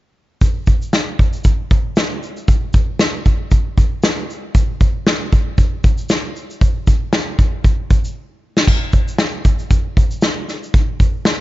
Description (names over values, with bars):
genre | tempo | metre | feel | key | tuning
pop | 116 BPM | 4/4 | swing 55% on 16ths | none | none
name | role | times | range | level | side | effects
unplugged drum kit | drums | 0.4-11.4 s | kick drum, shaker, snare drum, splash cymbal | -14 LUFS | equal | none
room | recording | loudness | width
little or no reverb | nothing above 7.6 kHz | -14 LUFS | side -17 dB against mid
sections
0.4-11.4 A section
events
drum fill 8.2-8.7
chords
none